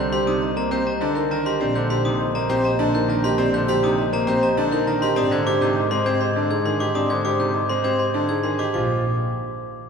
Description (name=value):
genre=classical, minimalist pattern music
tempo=101 BPM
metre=3/4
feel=straight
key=unclear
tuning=A4 = 440 Hz
part: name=vibraphone with soft mallets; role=melody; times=0.0-9.0 s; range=Ab4 to Eb5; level=-25 LUFS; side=left 4 dB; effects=none
part: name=bright grand piano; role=accompaniment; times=0.0-9.0 s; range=C3 to C4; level=-27 LUFS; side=equal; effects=none
part: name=bright concert grand piano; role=arpeggios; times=0.0-9.0 s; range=C4 to C5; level=-24 LUFS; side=right 4 dB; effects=none
part: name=glockenspiel with brass mallets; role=arpeggios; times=0.0-9.0 s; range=Bb5 to Ab6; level=-27 LUFS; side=left 5 dB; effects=none
part: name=clear double bass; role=bass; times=0.0-9.0 s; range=Bb1 to Ab2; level=-27 LUFS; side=right 1 dB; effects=none
room=wet church reverb, RT60 2.8 s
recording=minimal, uncompressed stereo recording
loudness=-19 LUFS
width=side -6 dB against mid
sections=0.0-8.7 A section; 8.7-9.9 B section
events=none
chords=0.0 Cm7; 1.6 Ebmaj7/Bb; 5.2 Abmaj7; 8.7 Bb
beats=0.42 1.01 | 1.61 2.20 2.80 | 3.39 3.98 4.58 | 5.17 5.77 6.36 | 6.96 7.55 8.14 | 8.74